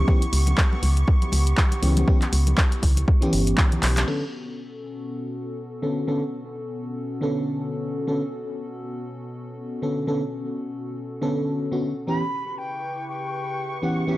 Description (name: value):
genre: deep house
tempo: 120 BPM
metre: 4/4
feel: swing 57% on 16ths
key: B minor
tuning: A4 = 439 Hz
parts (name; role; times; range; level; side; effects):
- hollow soft pad; sustained chords; 0.0-14.2 s; B2 to B4; -33 LUFS; left 1 dB; chorus, sidechain pumping
- mellow FM electric piano; stabs; 0.0-14.2 s; D3 to A4; -26 LUFS; equal; chorus, sidechain pumping, low-pass filter, analog delay
- organ-like FM bass; bass; 0.0-4.0 s; G1 to C#2; -20 LUFS; equal; sidechain pumping
- soft string machine; texture; 0.0-4.1, 12.1-14.2 s; C#6; -36 LUFS; equal; phaser, ensemble chorus
- electronic kick drum; drums; 0.1-3.7 s; none; -19 LUFS; equal; none
- congas; percussion; 0.1-4.1 s; none; -33 LUFS; left 1 dB; none
- punchy analog drum machine; drums; 0.2-4.2 s; crash cymbal, handclaps, hi-hat; -27 LUFS; equal; low-pass filter on hats, low-pass filter on snare, low-pass filter on cymbals, low-pass filter on room
- concert flute; melody; 12.1-14.2 s; E5 to B5; -30 LUFS; equal; analog delay
room: light reverb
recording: dry, gritty hardware recording, cassette tape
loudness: -21 LUFS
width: side -17 dB against mid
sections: 0.0-4.1 A section; 4.1-14.2 B section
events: drum fill 3.8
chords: 0.0 C#m7b5; 4.1 Bm9; 12.1 C#m7b5